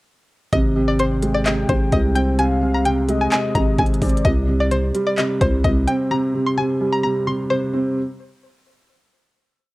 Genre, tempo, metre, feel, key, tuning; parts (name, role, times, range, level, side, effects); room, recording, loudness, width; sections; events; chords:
hip hop, trap; 129 BPM; 4/4; half-time; C minor; A4 = 445 Hz
string-like resonator pluck; melody; 0.5-7.7 s; C5 to C6; -23 LUFS; left 1 dB; chorus, low-pass filter, cassette tape
dark baby grand piano; accompaniment; 0.5-8.0 s; C3 to C4; -20 LUFS; right 1 dB; low-pass filter
growling 808-style bass; bass; 0.5-5.9 s; Ab1 to C2; -20 LUFS; equal
trap drum kit; drums; 0.5-6.0 s; handclaps, hi-hat, kick drum; -22 LUFS; equal; cassette tape
warm velvety synth lead; second line; 0.8-4.2 s; D5 to G5; -30 LUFS; left 5 dB; chorus, analog delay
light reverb; home recording on cassette; -17 LUFS; side -19 dB against mid
0.5-8.0 hook
0.5 Ab; 4.2 C5